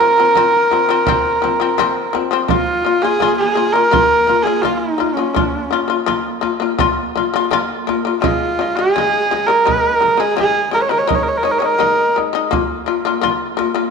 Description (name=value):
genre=mongolian traditional, Mongolian folk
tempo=84 BPM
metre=4/4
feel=straight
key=Bb minor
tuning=A4 = 441 Hz
part: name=rich horsehead fiddle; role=melody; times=0.0-12.1 s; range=Db4 to Db5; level=-14 LUFS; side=right 2 dB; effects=none
part: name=shamisen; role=arpeggios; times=0.0-13.9 s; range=Db3 to F4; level=-18 LUFS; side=left 7 dB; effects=none
part: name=frame drum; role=percussion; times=0.3-13.7 s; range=none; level=-24 LUFS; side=right 8 dB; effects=none
room=wet echo chamber reverb, RT60 1.8 s, small room ambience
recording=1960s-style stereo with parts hard left and right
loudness=-13 LUFS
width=side -5 dB against mid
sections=0.0-2.5 A section; 2.5-13.9 B section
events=none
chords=0.0 F5; 2.5 Bb5; 8.2 Db5; 11.1 Ab5; 12.5 Bb5